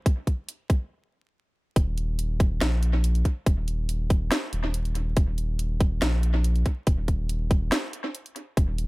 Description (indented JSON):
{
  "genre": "deep dubstep",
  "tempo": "141 BPM",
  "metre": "4/4",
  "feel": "half-time",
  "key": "unclear",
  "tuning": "A4 = 441 Hz",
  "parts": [
    { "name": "electronic kick drum", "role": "drums", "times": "0.1-8.7 s", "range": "none", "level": "-21 LUFS", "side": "equal", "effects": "small room ambience" },
    { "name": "garage drum kit", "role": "drums", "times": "0.1-8.9 s", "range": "hi-hat, snare drum", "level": "-29 LUFS", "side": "equal", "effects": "small room ambience, analog delay" },
    { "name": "soft dub sub bass", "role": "bass", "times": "1.8-8.9 s", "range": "Eb1 to Bb1", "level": "-25 LUFS", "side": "equal", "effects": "tube saturation" }
  ],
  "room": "little or no reverb",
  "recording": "echo-heavy mix, vinyl crackle",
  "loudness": "-23 LUFS",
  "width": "side -23 dB against mid",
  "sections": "0.0-1.8 A section; 1.8-8.9 B section",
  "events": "build-up 0.0-1.8; stop 0.9-1.8; drop 1.8-8.9",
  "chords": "none"
}